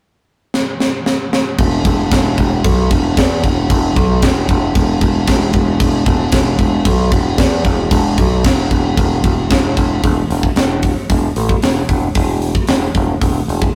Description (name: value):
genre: heavy metal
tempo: 114 BPM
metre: 4/4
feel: straight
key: unclear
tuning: A4 = 442 Hz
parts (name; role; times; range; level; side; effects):
- tight metal drum kit; drums; 0.5-13.7 s; crash cymbal, hi-hat, kick drum, snare drum; -17 LUFS; equal; none
- overdriven picked electric bass; bass; 1.6-13.7 s; E1 to E2; -18 LUFS; equal; none
room: moderate small room reverb, RT60 0.5 s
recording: rough rehearsal-room recording, warm saturation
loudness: -15 LUFS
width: mono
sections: 0.0-1.6 A section; 1.6-10.0 B section; 10.0-13.8 C section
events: drum fill 0.5-1.6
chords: none